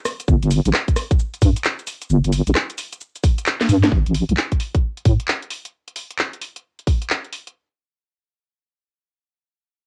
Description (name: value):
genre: UK garage, two-step garage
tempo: 132 BPM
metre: 4/4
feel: swing 64% on 16ths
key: unclear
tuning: A4 = 437 Hz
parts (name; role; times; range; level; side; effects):
- garage drum kit; drums; 0.1-7.5 s; handclaps, hi-hat, rim click, shaker, snare drum; -25 LUFS; equal; cassette tape
- deep soft wobble bass; bass; 0.3-5.2 s; G1 to A2; -19 LUFS; equal; chorus
- electronic kick drum; drums; 0.3-7.0 s; none; -19 LUFS; equal; cassette tape
room: little or no reverb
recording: home recording on cassette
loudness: -20 LUFS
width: mono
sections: 0.0-3.9 A section; 3.9-7.6 B section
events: drop 0.0-3.9; drum fill 3.6-3.9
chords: none